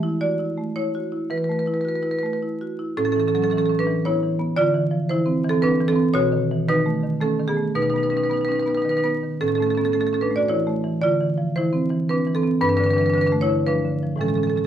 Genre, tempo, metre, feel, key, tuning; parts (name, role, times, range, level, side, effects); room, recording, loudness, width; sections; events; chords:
classical, contemporary piece for solo marimba; 112 BPM; 3/4; straight; A major; A4 = 438 Hz
marimba with medium hard mallets; solo; 0.0-14.7 s; G2 to E5; -19 LUFS; right 1 dB
moderate stone room reverb, RT60 1.0 s; dark, warm production, vinyl crackle; -19 LUFS; side -10 dB against mid
0.0-3.0 A section; 3.0-14.7 B section
0.0 E9sus4; 3.0 Aadd9; 4.6 Dm9; 6.2 B9; 7.8 Badd9; 9.4 Aadd9; 11.0 Dm9; 12.6 G9